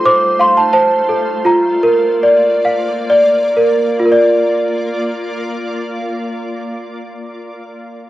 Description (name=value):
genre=children's music, lullaby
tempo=59-91 BPM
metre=3/4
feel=straight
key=Bb major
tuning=A4 = 439 Hz
part: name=worn celesta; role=melody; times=0.0-7.1 s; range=F4 to D6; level=-11 LUFS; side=equal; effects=cassette tape
part: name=shimmering ambient pad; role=sustained chords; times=0.0-7.0 s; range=A3 to D5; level=-23 LUFS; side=equal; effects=chorus, built-in reverb, cassette tape
room=light reverb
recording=home recording on cassette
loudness=-11 LUFS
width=side -15 dB against mid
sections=0.0-4.1 A section; 4.1-8.1 B section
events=slowing down 0.0-4.1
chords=0.0 F; 1.4 Bb